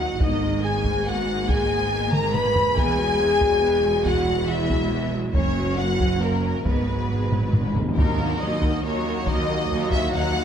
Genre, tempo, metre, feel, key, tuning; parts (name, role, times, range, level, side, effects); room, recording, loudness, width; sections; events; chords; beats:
cinematic, epic orchestral film score; 140 BPM; 3/4; straight; G# minor; A4 = 436 Hz
warm symphonic violin section; melody; 0.0-10.4 s; A#4 to B5; -30 LUFS; left 2 dB
warm symphonic violin section; second line; 0.0-10.4 s; A#3 to B5; -29 LUFS; left 3 dB
warm symphonic viola section; accompaniment; 0.0-10.4 s; D#3 to D#4; -30 LUFS; right 1 dB
mellow French horn section; sustained chords; 0.0-10.4 s; A#3 to B4; -25 LUFS; left 2 dB
rich symphonic cello section; bass; 0.0-10.4 s; D#2 to G#2; -29 LUFS; right 2 dB
rich symphonic double bass section; bass; 0.0-10.4 s; E1 to D#2; -29 LUFS; right 3 dB
taiko ensemble; drums; 0.2-10.3 s; -26 LUFS; equal
timpani; percussion; 0.2-0.8, 6.7-8.6 s; G#2 to D#3; -30 LUFS; left 1 dB
warm trombone section; sustained chords; 8.0-10.4 s; F#3 to A#3; -32 LUFS; right 5 dB
moderate scoring stage reverb, RT60 1.9 s; -20 LUFS; side -8 dB against mid
0.0-8.0 A section; 8.0-10.4 A section
drum fill 2.1-2.8, 7.3-8.0; timpani fill 6.7-8.0
0.2 G#madd9; 2.8 Eadd9; 5.3 F#; 6.7 G#m7; 8.0 D#m
| 0.21 0.64 1.07 | 1.50 1.92 2.35 | 2.77 3.20 3.63 | 4.06 4.49 4.92 | 5.35 5.78 6.21 | 6.66 7.10 7.54 | 7.98 8.41 8.85 | 9.28 9.70 10.13